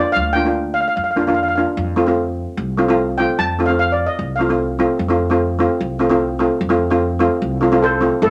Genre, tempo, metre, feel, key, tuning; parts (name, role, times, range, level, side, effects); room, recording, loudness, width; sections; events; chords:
calypso; 149 BPM; 4/4; straight; A4 = 439 Hz
steel pan; melody; 0.0-4.5, 7.8-8.3 s; E4 to A5; -21 LUFS; equal
steel pan; accompaniment; 0.0-8.2 s; A3 to F4; -19 LUFS; equal
upright bass; bass; 0.2-8.3 s; A1 to F2; -26 LUFS; equal
wet club reverb, RT60 0.5 s; -18 LUFS; mono
0.0-5.0 A section; 5.0-8.2 B section
steel pan solo 0.0-5.0
0.0 Bb6/D; 1.8 F